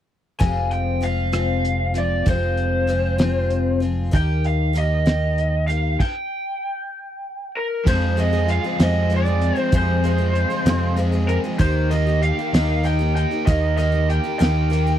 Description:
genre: folk rock and heartland rock.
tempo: 64 BPM (dotted quarters).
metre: 6/8.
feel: straight.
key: F minor.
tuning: A4 = 439 Hz.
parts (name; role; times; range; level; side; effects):
lead guitar through a small cranked amp; melody; 0.4-15.0 s; Bb4 to Ab5; -24 LUFS; right 1 dB; overdrive.
picked twelve-string acoustic guitar; accompaniment; 0.4-15.0 s; F2 to Ab4; -26 LUFS; left 5 dB; none.
fingered electric bass; bass; 0.4-15.0 s; F1 to F2; -20 LUFS; equal; none.
cloth-damped thuddy drum kit; drums; 0.4-14.9 s; crash cymbal, hi-hat, kick drum, rim click, snare drum; -20 LUFS; equal; none.
overdriven electric guitar; riff; 7.9-15.0 s; F2 to G4; -27 LUFS; right 2 dB; spring reverb.
room: little or no reverb.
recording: dry, close 1970s-style studio recording.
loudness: -18 LUFS.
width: side -11 dB against mid.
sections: 0.4-7.9 A section; 7.9-15.0 B section.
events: stop 6.0-7.9.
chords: 0.4 Fm; 4.1 Eb; 7.9 Fm; 11.6 Eb.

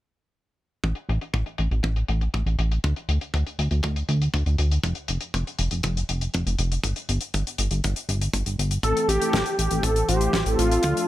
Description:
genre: italo disco.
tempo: 120 BPM.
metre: 4/4.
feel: straight.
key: A minor.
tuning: A4 = 440 Hz.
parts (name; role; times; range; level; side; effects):
chorused synth bass; bass; 0.8-10.9 s; F1 to D2; -23 LUFS; equal; none.
damped 70s drum kit; drums; 0.8-11.1 s; hi-hat, snare drum; -30 LUFS; left 3 dB; low-pass filter on hats, low-pass filter on snare, low-pass filter on room.
kick drum; drums; 0.8-10.9 s; none; -29 LUFS; equal; high-pass filter on kick, high-pass filter on snare, high-pass filter on room.
wide unison lead; melody; 8.8-11.1 s; F4 to A4; -23 LUFS; equal; digital delay.
mellow synth brass; stabs; 8.8-11.1 s; E3 to C5; -27 LUFS; left 1 dB; chorus.
room: small room ambience.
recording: bright 1980s-style digital production.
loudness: -22 LUFS.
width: side -14 dB against mid.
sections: 0.8-11.1 A section.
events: none.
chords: 0.8 N.C.; 8.8 Am.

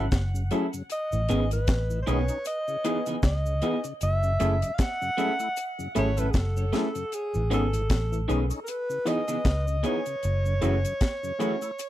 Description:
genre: lovers rock reggae.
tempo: 77 BPM.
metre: 4/4.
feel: swing 57% on 16ths.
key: unclear.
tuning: A4 = 440 Hz.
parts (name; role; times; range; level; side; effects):
breathy alto saxophone; melody; 0.0-11.9 s; G#4 to F#5; -30 LUFS; equal; tape echo.
tonewheel organ; accompaniment; 0.0-11.7 s; F#2 to E4; -36 LUFS; left 3 dB; overdrive, chorus vibrato, slow rotary speaker.
electric guitar through a small old amp; stabs; 0.0-11.5 s; D#3 to A4; -29 LUFS; right 3 dB; none.
vintage muted fingered electric bass; bass; 0.0-10.8 s; F#1 to C#2; -26 LUFS; equal; none.
deep reggae drum kit; drums; 0.1-11.9 s; hi-hat, kick drum, snare drum; -27 LUFS; equal; none.
cabasa; percussion; 0.1-11.9 s; none; -46 LUFS; right 4 dB; none.
mellow tine electric piano; accompaniment; 0.5-11.5 s; A3 to G#4; -31 LUFS; moving between left 6 dB and equal; auto-pan.
room: light reverb.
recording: dry, close 1970s-style studio recording.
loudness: -24 LUFS.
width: side -14 dB against mid.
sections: 0.0-11.9 A section.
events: none.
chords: 0.0 F#m7; 0.9 Amaj9#11; 2.5 C#m9; 4.0 F#m7; 7.1 Amaj9#11; 8.7 C#m9; 10.2 F#m7.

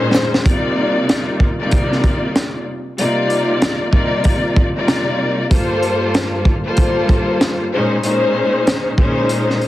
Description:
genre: hip hop, boom-bap hip-hop.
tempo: 95 BPM.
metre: 4/4.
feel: swing 63% on 16ths.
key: unclear.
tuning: A4 = 440 Hz.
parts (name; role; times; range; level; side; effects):
warm studio string section; accompaniment; 0.0-9.7 s; G2 to D5; -16 LUFS; left 1 dB; cassette tape, high-pass filter, low-pass filter.
crunchy breakbeat drum kit; drums; 0.1-9.7 s; hi-hat, kick drum, snare drum; -17 LUFS; equal; none.
room: light reverb, studio ambience.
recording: heavily compressed radio sound.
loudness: -14 LUFS.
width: side -15 dB against mid.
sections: 0.5-9.7 A section.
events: drum fill 0.0-0.5; kick muted 9.3-9.7.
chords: 0.5 Cm11; 5.5 Gm11; 7.7 Bbm11.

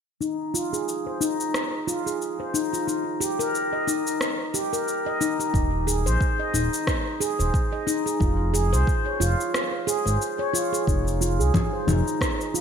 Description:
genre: organic downtempo.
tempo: 90 BPM.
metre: 4/4.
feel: swing 57% on 16ths.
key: F minor.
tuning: A4 = 440 Hz.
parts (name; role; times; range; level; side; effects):
handpan; arpeggios; 0.2-12.6 s; Eb4 to Eb5; -25 LUFS; equal; low-pass filter, digital delay.
electronic shaker, rim click and congas; drums; 0.2-12.6 s; none; -28 LUFS; left 1 dB; gated reverb.
smooth synth bass; bass; 5.5-12.0 s; Eb1 to C2; -23 LUFS; equal; sidechain pumping.
electronic kick drum; drums; 5.5-12.4 s; none; -25 LUFS; equal; none.
room: moderate lush hall reverb, RT60 1.8 s.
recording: bright 1980s-style digital production.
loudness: -22 LUFS.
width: side -7 dB against mid.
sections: 0.2-10.9 A section; 10.9-12.6 B section.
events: filter sweep on handpan 0.2-10.9, 10.9-12.6; break 9.5-10.9.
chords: 0.2 Fm7; 2.9 Eb; 5.5 Ab/Eb; 8.2 Dbmaj7/F (rootless); 10.9 Fm7.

